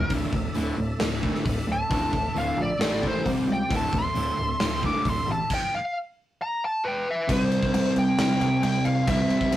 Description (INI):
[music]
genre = hard rock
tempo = 134 BPM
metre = 4/4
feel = straight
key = unclear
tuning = A4 = 440 Hz
[part]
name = smooth overdriven lead guitar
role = melody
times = 0.0-9.6 s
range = Bb4 to D6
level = -27 LUFS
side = equal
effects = none
[part]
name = crunchy overdriven guitar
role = riff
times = 0.0-9.6 s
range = D2 to C4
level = -27 LUFS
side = right 1 dB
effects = none
[part]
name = picked electric bass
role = bass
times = 0.0-9.6 s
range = D1 to C#2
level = -30 LUFS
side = equal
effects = none
[part]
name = overdriven tonewheel organ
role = sustained chords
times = 0.1-5.5 s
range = A3 to E5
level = -37 LUFS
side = equal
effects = slow rotary speaker, chorus vibrato
[part]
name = gated 80s drum kit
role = drums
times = 0.1-9.6 s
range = crash cymbal, hi-hat, kick drum, snare drum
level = -29 LUFS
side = equal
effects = none
[part]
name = crunchy overdriven guitar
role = riff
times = 7.3-9.6 s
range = C3 to C4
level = -28 LUFS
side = equal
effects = none
[sound]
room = moderate studio reverb, RT60 0.5 s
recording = rough rehearsal-room recording, warm saturation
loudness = -22 LUFS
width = side -13 dB against mid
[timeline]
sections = 0.0-7.3 A section; 7.3-9.6 B section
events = lead electric guitar solo 0.0-7.3; stop 5.5-7.3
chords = 0.1 D5; 2.8 A5; 3.3 C5; 3.7 D5; 6.4 N.C.; 7.3 C5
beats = | 0.12 0.57 1.01 1.46 | 1.91 2.36 2.81 3.26 | 3.71 4.16 4.61 5.05 | 5.50 5.95 6.40 6.84 | 7.29 7.74 8.19 8.63 | 9.08 9.52